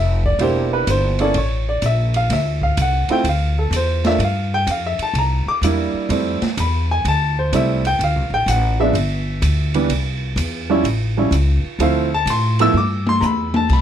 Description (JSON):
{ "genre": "jazz, small-group swing and bop", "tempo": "126 BPM", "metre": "4/4", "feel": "swing 67% on 8ths", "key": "unclear", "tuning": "A4 = 439 Hz", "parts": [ { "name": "clear upright piano", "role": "accompaniment", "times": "0.0-13.8 s", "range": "E3 to E6", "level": "-19 LUFS", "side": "right 1 dB", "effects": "none" }, { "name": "upright bass", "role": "bass", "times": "0.0-13.8 s", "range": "E1 to A2", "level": "-19 LUFS", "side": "equal", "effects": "none" }, { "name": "open jazz drum kit", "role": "drums", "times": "0.2-13.8 s", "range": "crash cymbal, hi-hat, kick drum, ride cymbal, snare drum, toms", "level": "-25 LUFS", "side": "right 1 dB", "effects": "none" } ], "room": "light reverb", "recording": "none", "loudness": "-16 LUFS", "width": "side -9 dB against mid", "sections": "0.0-13.7 A section", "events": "drum fill 12.7-13.7", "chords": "0.4 Em7b5; 1.4 Aadd11; 2.3 Dm9; 4.2 Fmaj9; 5.2 C9; 6.1 Fmaj9; 8.0 Dm7; 8.9 G; 9.9 C; 10.8 A7b13; 11.8 Dm7; 12.7 Emadd11" }